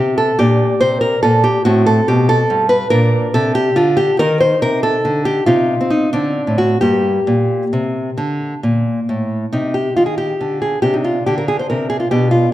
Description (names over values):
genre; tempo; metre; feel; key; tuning
classical, baroque-style dance for nylon-string guitar; 88-97 BPM (dotted quarters); 12/8; rubato; G minor, C minor from 9.5 s; A4 = 439 Hz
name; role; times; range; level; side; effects
nylon-string guitar; solo; 0.0-12.5 s; G2 to C5; -13 LUFS; equal; none
room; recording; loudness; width
wet recital hall reverb, RT60 1.6 s; dark, warm production; -13 LUFS; side -14 dB against mid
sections
0.0-9.5 A section; 9.5-12.5 A section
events
none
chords
0.4 Gm/Bb; 1.7 Am13; 2.9 Bbmaj13; 4.2 Cm; 6.1 D5; 6.8 Gm; 9.5 Cm; 10.8 C9sus4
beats
0.40 1.02 | 1.66 2.29 2.92 3.56 | 4.19 4.83 5.48 6.14 | 6.82 7.50 8.18 8.85 | 9.53 10.19 10.84 11.49 | 12.12